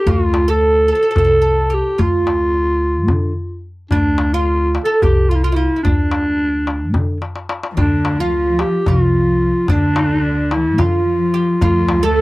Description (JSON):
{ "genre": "Turkish makam ensemble", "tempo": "218 BPM (eighths)", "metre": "7/8", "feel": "straight", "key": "D makam huseyni", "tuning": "A4 = 440 Hz", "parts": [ { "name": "growling clarinet", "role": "melody", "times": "0.0-12.2 s", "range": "D4 to A4", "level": "-17 LUFS", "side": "equal", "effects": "none" }, { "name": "oud", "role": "second line", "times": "0.0-12.2 s", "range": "D4 to A4", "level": "-22 LUFS", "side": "right 4 dB", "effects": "none" }, { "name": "upright bass", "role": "bass", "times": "0.1-12.2 s", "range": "C2 to D3", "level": "-19 LUFS", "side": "equal", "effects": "none" }, { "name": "darbuka", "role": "percussion", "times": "0.1-12.2 s", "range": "none", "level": "-20 LUFS", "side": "left 1 dB", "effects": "none" }, { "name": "warm studio cello section", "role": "second line", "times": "7.7-12.2 s", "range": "D3 to A3", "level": "-20 LUFS", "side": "left 1 dB", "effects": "none" } ], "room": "light reverb", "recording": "dry, close 1970s-style studio recording", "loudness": "-13 LUFS", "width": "side -20 dB against mid", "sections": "0.0-7.8 A section; 7.8-12.2 A section", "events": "drum fill 7.2-7.8", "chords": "none", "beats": "| 0.07 0.34 0.62 0.89 1.17 1.44 1.72 | 1.99 2.27 2.54 2.82 3.10 3.37 3.65 | 3.92 4.20 4.47 4.75 5.02 5.30 5.57 | 5.85 6.12 6.40 6.67 6.95 7.22 7.50 | 7.78 8.05 8.32 8.60 8.87 9.15 9.42 | 9.70 9.97 10.25 10.52 10.80 11.07 11.35 | 11.62 11.90 12.17" }